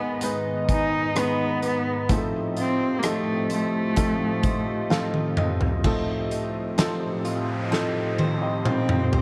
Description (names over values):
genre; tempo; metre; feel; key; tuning
pop ballad; 64 BPM; 4/4; straight; unclear; A4 = 440 Hz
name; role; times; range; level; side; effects
rich cello; melody; 0.0-9.2 s; A3 to Eb4; -29 LUFS; equal; none
warm concert grand piano; accompaniment; 0.0-9.2 s; Ab2 to F5; -30 LUFS; equal; none
chorused pulse-width pad; sustained chords; 0.0-9.2 s; Ab2 to Bb5; -33 LUFS; equal; none
picked acoustic archtop guitar; arpeggios; 0.0-9.2 s; Ab2 to C5; -35 LUFS; equal; none
huge arena drum kit; drums; 0.2-9.2 s; crash cymbal, hi-hat, kick drum, rim click, snare drum, toms; -28 LUFS; equal; none
noise sweep; sound effects; 6.6-9.2 s; none; -40 LUFS; equal; none
room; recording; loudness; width
light reverb, studio reverb; none; -24 LUFS; mono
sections
0.0-5.8 A section; 5.8-9.2 B section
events
grand piano fill 4.4-5.8; drum fill 4.9-5.8, 7.7-9.2; noise sweep 6.6-9.2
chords
0.0 Abm; 2.1 F7/A